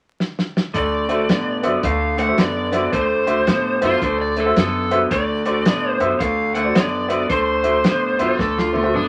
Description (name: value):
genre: electric blues shuffle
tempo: 110 BPM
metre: 4/4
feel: swing 63% on 8ths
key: D mixolydian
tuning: A4 = 440 Hz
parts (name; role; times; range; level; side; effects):
- warm soul drum kit; drums; 0.2-9.1 s; hi-hat, kick drum, snare drum, toms; -23 LUFS; equal; none
- electric guitar through a small old amp; riff; 0.7-9.1 s; D3 to B3; -24 LUFS; equal; none
- upright bass; bass; 0.7-9.1 s; F#1 to A2; -32 LUFS; equal; none
- lead guitar through a small cranked amp; melody; 0.8-8.4 s; C5 to F#5; -24 LUFS; equal; overdrive
- warm upright piano; accompaniment; 1.1-8.9 s; F#4 to E5; -24 LUFS; equal; none
- overdriven slide guitar; second line; 3.9-9.1 s; D4 to D5; -25 LUFS; equal; none
room: wet studio reverb, RT60 0.5 s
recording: vinyl crackle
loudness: -19 LUFS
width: mono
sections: 0.7-9.1 A section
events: drum fill 0.2-0.7, 8.4-9.1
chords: 0.0 N.C.; 0.7 D7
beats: 0.20 | 0.74 1.29 1.84 2.38 | 2.93 3.48 4.02 4.57 | 5.11 5.66 6.21 6.75 | 7.30 7.84 8.39 8.94